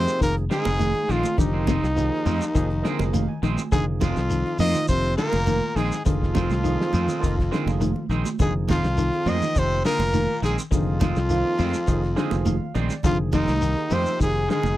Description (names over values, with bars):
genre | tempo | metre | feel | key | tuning
afrobeat | 103 BPM | 4/4 | straight | F dorian | A4 = 439 Hz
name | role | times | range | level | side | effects
warm trumpet | melody | 0.0-14.8 s | Eb4 to Eb5 | -26 LUFS | equal | none
breathy baritone saxophone | second line | 0.0-14.8 s | Eb2 to Eb3 | -33 LUFS | left 6 dB | none
clear trombone | second line | 0.0-14.8 s | Eb3 to Eb4 | -35 LUFS | right 4 dB | none
barky tine electric piano | accompaniment | 0.0-14.4 s | F3 to Ab5 | -32 LUFS | moving between right 2 dB and right 8 dB | auto-pan
electric guitar at the edge of break-up | arpeggios | 0.0-14.7 s | C3 to F3 | -30 LUFS | left 6 dB | analog chorus
electric guitar at the edge of break-up | stabs | 0.0-14.7 s | Eb3 to C4 | -32 LUFS | right 8 dB | none
fingered electric bass | bass | 0.0-14.8 s | F1 to F2 | -24 LUFS | equal | none
warm soul drum kit | drums | 0.1-14.6 s | hi-hat, kick drum, snare drum | -25 LUFS | equal | none
shekere | percussion | 0.1-14.8 s | none | -32 LUFS | left 1 dB | none
congas | percussion | 0.7-14.8 s | none | -30 LUFS | right 6 dB | none
room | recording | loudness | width
little or no reverb | dry, close 1970s-style studio recording | -20 LUFS | side -15 dB against mid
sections
0.0-14.8 A section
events
tine electric piano fill 2.6-3.7, 11.9-13.0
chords
0.0 Fm7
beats
0.21 0.80 | 1.38 1.97 2.55 3.14 | 3.72 4.30 4.89 5.47 | 6.05 6.64 7.22 7.80 | 8.39 8.97 9.55 10.13 | 10.71 11.30 11.88 12.46 | 13.04 13.62 14.20